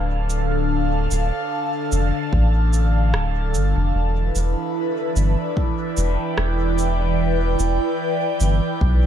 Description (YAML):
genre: ambient dub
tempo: 74 BPM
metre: 4/4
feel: swing 56% on 16ths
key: unclear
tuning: A4 = 441 Hz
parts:
  - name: airy breathy pad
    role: sustained chords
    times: 0.0-9.1 s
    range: D3 to A5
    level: -22 LUFS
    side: equal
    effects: chorus, phaser
  - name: soft dub sub bass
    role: bass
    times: 0.0-9.1 s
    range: D1 to B1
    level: -19 LUFS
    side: equal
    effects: tube saturation
  - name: electronic cabasa and rim click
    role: drums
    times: 0.3-8.6 s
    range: none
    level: -30 LUFS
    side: right 2 dB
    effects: studio ambience, dub echo
  - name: electronic kick drum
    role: drums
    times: 2.3-9.0 s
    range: none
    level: -23 LUFS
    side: equal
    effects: studio ambience
room: little or no reverb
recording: none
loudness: -18 LUFS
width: side -10 dB against mid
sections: 0.0-9.1 A section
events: none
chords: 0.0 Dm; 3.9 Em7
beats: | 0.70 1.51 2.33 3.14 | 3.95 4.76 5.57 6.38 | 7.19 8.00 8.81